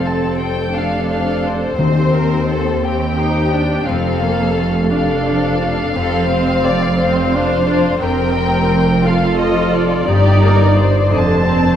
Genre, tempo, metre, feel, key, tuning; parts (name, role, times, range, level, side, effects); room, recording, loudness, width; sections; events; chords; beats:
cinematic, emotional film score for orchestra; 58 BPM (dotted quarters); 6/8; rubato; A4 = 440 Hz
muted studio violin section; melody; 0.0-11.8 s; C5 to A5; -22 LUFS; left 2 dB
muted studio violin section; second line; 0.0-11.8 s; G4 to D5; -22 LUFS; left 3 dB
muted studio viola section; accompaniment; 0.0-11.8 s; D3 to F4; -20 LUFS; right 3 dB
concert harp; arpeggios; 0.0-11.8 s; F2 to A5; -21 LUFS; left 4 dB
muted studio cello section; bass; 0.0-11.8 s; Eb2 to G2; -19 LUFS; right 2 dB
muted studio double bass section; bass; 0.0-11.8 s; F1 to Eb2; -21 LUFS; right 2 dB
timpani; percussion; 1.8-2.8 s; Eb3; -22 LUFS; equal
wet scoring stage reverb, RT60 1.6 s; -13 LUFS; side -9 dB against mid
0.0-11.8 A section
0.0 F; 1.8 Cm/Eb; 3.9 F; 6.0 Dm7/F; 8.0 Bbsus2/F
0.75 | 1.80 2.85 | 3.89 4.92 | 5.96 6.99 | 8.02 9.05 | 10.08 11.12